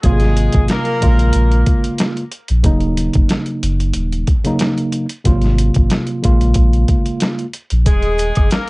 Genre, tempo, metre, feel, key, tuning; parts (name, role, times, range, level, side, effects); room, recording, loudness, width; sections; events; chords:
hip hop, boom-bap hip-hop; 92 BPM; 4/4; swing 54% on 16ths; Eb dorian; A4 = 440 Hz
mellow tine electric piano; accompaniment; 0.0-7.5 s; C3 to F4; -19 LUFS; right 1 dB; medium stereo tremolo, cassette tape
mellow horn section; stabs; 0.0-1.6, 7.9-8.7 s; Ab3 to Bb4; -21 LUFS; left 1 dB; cassette tape, tape echo
warm sub bass; bass; 0.0-8.5 s; Eb1 to Bb1; -15 LUFS; equal
boom bap sampler-style drum kit; drums; 0.0-8.7 s; hi-hat, kick drum, snare drum; -16 LUFS; equal; cassette tape
maracas and woodblock; percussion; 7.9-8.7 s; -32 LUFS; right 2 dB
little or no reverb; home recording on cassette, nothing above 10.5 kHz; -13 LUFS; side -24 dB against mid
0.0-8.7 A section
0.0 Ab13; 1.0 Bbm7; 2.6 Ebm7; 5.3 Ab13; 6.2 Bbm7; 7.9 Ebm